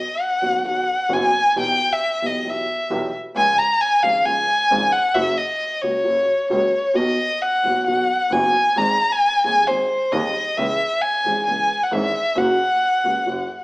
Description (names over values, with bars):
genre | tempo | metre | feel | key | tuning
tango | 133 BPM | 4/4 | rubato | B major | A4 = 440 Hz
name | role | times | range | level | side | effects
warm violin | second line | 0.0-13.6 s | B#4 to A#5 | -18 LUFS | equal | none
dark upright piano | accompaniment | 0.4-13.5 s | D#1 to G#4 | -25 LUFS | right 1 dB | none
rich double bass | bass | 0.4-13.5 s | F#1 to D#2 | -29 LUFS | equal | none
room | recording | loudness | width
wet stone room reverb, RT60 1.1 s | band playing live in one room, small speaker sound | -17 LUFS | side -21 dB against mid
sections
0.0-13.6 A section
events
violin solo 0.0-13.6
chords
0.0 B; 1.6 Em/B; 3.4 C#; 5.2 F#; 7.0 B; 8.8 G#; 10.6 C#m; 12.4 F#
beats
0.20 0.66 1.11 | 1.56 2.01 2.46 2.91 | 3.36 3.81 4.26 4.71 | 5.16 5.61 6.06 6.52 | 6.97 7.42 7.87 8.32 | 8.78 9.23 9.68 10.12 | 10.57 11.02 11.47 11.92 | 12.37 12.82 13.27